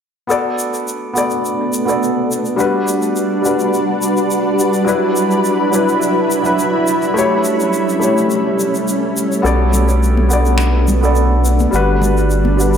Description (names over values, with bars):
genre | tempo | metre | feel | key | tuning
sunset chillout | 105 BPM | 4/4 | straight | B minor | A4 = 440 Hz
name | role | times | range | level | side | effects
dark baby grand piano | accompaniment | 0.3-12.8 s | F#3 to D5 | -17 LUFS | moving between left 4 dB and right 3 dB | auto-pan, vintage 12-bit sampler grit, tape echo
shimmering ambient pad | sustained chords | 1.2-12.8 s | F#3 to B4 | -17 LUFS | equal | chorus, built-in reverb
shaker and finger snaps | drums | 0.3-12.8 s | none | -26 LUFS | left 1 dB | none
round analog bass | bass | 9.4-12.8 s | G1 to B1 | -14 LUFS | equal | none
congas | percussion | 9.7-12.6 s | none | -24 LUFS | left 2 dB | none
room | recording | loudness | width
wet plate reverb, RT60 1.8 s, studio ambience | dreamy mix soaked in reverb | -13 LUFS | side -8 dB against mid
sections
0.3-12.8 A section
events
none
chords
0.3 Bm7; 2.6 Gmaj7; 4.9 D6/F#; 7.2 A7; 9.4 Bm7; 11.7 Gmaj7